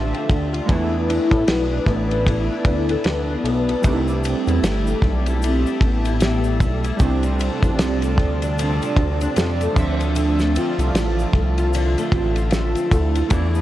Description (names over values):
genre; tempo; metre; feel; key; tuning
indie pop, bedroom pop; 76 BPM; 4/4; swing 60% on 16ths; unclear; A4 = 439 Hz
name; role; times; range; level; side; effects
warm velvety synth lead; melody; 0.0-13.6 s; A3 to F4; -25 LUFS; right 1 dB; lush chorus, dub echo
chorused retro synth keys; accompaniment; 0.0-13.6 s; F3 to E5; -29 LUFS; right 4 dB; tremolo, cassette tape, dub echo
nylon-string guitar; accompaniment; 0.0-13.6 s; C3 to A4; -26 LUFS; left 4 dB; ensemble chorus, vibrato effect, dub echo
warbly tape-like pad; sustained chords; 0.0-13.6 s; F3 to A5; -30 LUFS; equal; chorus, built-in reverb
chorused synth bass; bass; 0.0-13.6 s; G1 to A2; -21 LUFS; equal; none
cloth-damped thuddy drum kit; drums; 0.1-13.5 s; crash cymbal, kick drum, ride cymbal, snare drum; -23 LUFS; equal; none
tube shaker; percussion; 3.8-13.6 s; none; -44 LUFS; left 6 dB; none
room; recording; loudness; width
studio reverb; echo-heavy mix, cassette tape; -17 LUFS; side -14 dB against mid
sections
0.0-13.6 A section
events
none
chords
0.0 Dm7; 0.7 E7sus4; 3.8 C6; 7.0 F6; 9.8 Dm7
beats
| 0.69 1.48 2.27 3.05 | 3.84 4.63 5.42 6.21 | 7.00 7.79 8.57 9.36 | 10.15 10.94 11.73 12.52 | 13.31